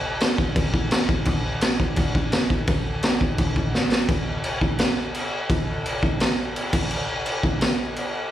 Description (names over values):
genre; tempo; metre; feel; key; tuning
punk; 170 BPM; 4/4; straight; none; none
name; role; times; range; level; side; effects
raw garage drum kit; drums; 0.2-8.0 s; crash cymbal, kick drum, snare drum; -20 LUFS; equal; none
room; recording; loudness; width
light reverb; live gig heard through the venue's PA, club reverb; -20 LUFS; side -12 dB against mid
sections
0.0-4.1 A section; 4.1-8.3 B section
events
drum fill 3.7-4.1; half time 4.1-8.3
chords
none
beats
0.21 0.56 0.92 | 1.27 1.62 1.98 2.33 | 2.68 3.03 3.38 3.74 | 4.09 4.44 4.79 5.15 | 5.50 5.85 6.21 6.56 | 6.91 7.26 7.62 7.97